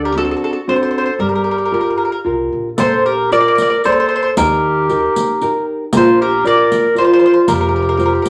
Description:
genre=italian folk, Italian serenade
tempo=115 BPM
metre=3/4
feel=rubato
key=Bb major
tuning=A4 = 439 Hz
part: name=clear clarinet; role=second line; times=0.0-8.3 s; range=F4 to Bb4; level=-18 LUFS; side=equal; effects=none
part: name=nylon-string guitar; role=accompaniment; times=0.0-8.3 s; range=D3 to D5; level=-21 LUFS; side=equal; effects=none
part: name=upright bass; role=bass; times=0.0-8.2 s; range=F1 to Eb2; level=-28 LUFS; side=equal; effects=none
part: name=mandolin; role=melody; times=0.1-8.3 s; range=A4 to D5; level=-19 LUFS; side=equal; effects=none
part: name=riq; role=percussion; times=2.8-8.3 s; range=none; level=-23 LUFS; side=equal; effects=none
room=wet studio reverb, RT60 0.6 s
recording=none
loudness=-14 LUFS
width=mono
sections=0.0-2.8 A section; 2.8-8.3 B section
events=none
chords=0.0 D7; 1.2 Gm7; 2.8 Bbmaj7; 4.4 Eb; 5.9 Bb; 7.5 Fsus2

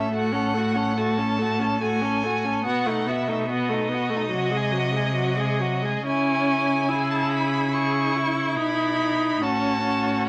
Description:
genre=classical, slow romantic movement for string quartet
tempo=71 BPM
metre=4/4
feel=rubato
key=unclear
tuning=A4 = 440 Hz
part: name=rich violin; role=melody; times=0.0-10.3 s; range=D#5 to C#6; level=-30 LUFS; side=equal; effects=none
part: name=rich violin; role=second line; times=0.0-10.3 s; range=D#4 to A4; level=-31 LUFS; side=equal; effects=none
part: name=warm viola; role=accompaniment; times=0.0-10.3 s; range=F#3 to E4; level=-28 LUFS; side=equal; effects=none
part: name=warm cello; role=bass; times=0.0-10.3 s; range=A2 to C#3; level=-30 LUFS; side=equal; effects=none
room=wet studio ambience, RT60 0.4 s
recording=none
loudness=-24 LUFS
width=mono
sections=0.0-10.3 A section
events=none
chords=0.0 F#m/A; 2.6 B7; 4.3 G#7/B#; 6.0 C#m7; 9.4 F#m/A

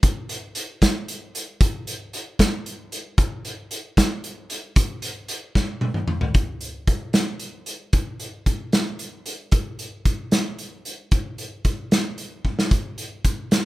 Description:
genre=rock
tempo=76 BPM (dotted quarters)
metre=6/8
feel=straight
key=none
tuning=none
part: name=loose indie drum kit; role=drums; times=0.0-13.6 s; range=hi-hat, kick drum, snare drum, toms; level=-20 LUFS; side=equal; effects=none
room=light reverb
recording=rough home demo mix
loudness=-21 LUFS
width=side -18 dB against mid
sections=0.0-6.3 A section; 6.3-13.7 B section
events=drum fill 5.6-6.3, 12.5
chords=none

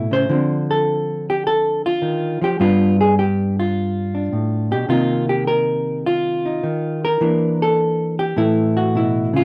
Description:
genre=solo jazz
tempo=104 BPM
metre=4/4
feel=swing 69% on 8ths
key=G minor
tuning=A4 = 441 Hz
part: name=hollow-body jazz guitar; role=solo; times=0.0-9.4 s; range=G2 to C5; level=-19 LUFS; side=equal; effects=none
room=light reverb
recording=dry, close 1970s-style studio recording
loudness=-19 LUFS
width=mono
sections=0.0-9.4 A section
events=none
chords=0.3 Dm7; 2.6 G7; 4.9 Cm7; 7.2 Em7b5; 8.4 A5

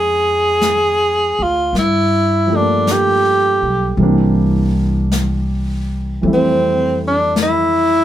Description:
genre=jazz ballad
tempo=53 BPM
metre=4/4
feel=swing 69% on 8ths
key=F major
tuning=A4 = 440 Hz
part: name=clear tenor saxophone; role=melody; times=0.0-8.0 s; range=C4 to Ab4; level=-14 LUFS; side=equal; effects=none
part: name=warm baby grand piano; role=accompaniment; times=0.0-8.0 s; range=E3 to E4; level=-20 LUFS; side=right 1 dB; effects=none
part: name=upright bass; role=bass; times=0.0-8.0 s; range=B1 to G2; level=-19 LUFS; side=equal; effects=none
part: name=jazz brush drum kit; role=drums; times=0.6-8.0 s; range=brushed snare drum, hi-hat, snare drum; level=-24 LUFS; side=left 3 dB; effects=none
room=moderate small room reverb, RT60 0.6 s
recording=band playing live in one room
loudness=-13 LUFS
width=side -12 dB against mid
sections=0.0-8.0 A section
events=none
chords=0.0 Bbm11 (rootless); 1.7 Gm9; 4.0 C7; 6.2 Fmaj7

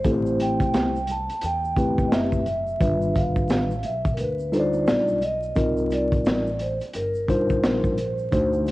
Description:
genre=hip hop, jazz-hop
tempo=87 BPM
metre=4/4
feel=swing 61% on 16ths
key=unclear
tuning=A4 = 440 Hz
part: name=vibraphone with soft mallets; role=melody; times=0.0-8.7 s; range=Bb4 to A5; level=-27 LUFS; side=right 1 dB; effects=cassette tape
part: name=mellow tine electric piano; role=accompaniment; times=0.0-8.7 s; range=Eb3 to D5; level=-24 LUFS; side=left 1 dB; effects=medium stereo tremolo, cassette tape
part: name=crunchy breakbeat drum kit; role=drums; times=0.0-8.7 s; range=hi-hat, kick drum, snare drum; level=-25 LUFS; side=equal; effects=cassette tape
part: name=tube shaker and congas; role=percussion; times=0.0-8.7 s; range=none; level=-43 LUFS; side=right 2 dB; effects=none
part: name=upright bass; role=bass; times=0.1-8.7 s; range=F#1 to E2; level=-31 LUFS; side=equal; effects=tube saturation
room=light reverb, studio ambience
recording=home recording on cassette, vinyl crackle, nothing above 10.8 kHz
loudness=-21 LUFS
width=side -18 dB against mid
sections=0.0-8.7 A section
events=none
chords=0.0 Am7; 2.8 G7b13; 5.6 Cm11

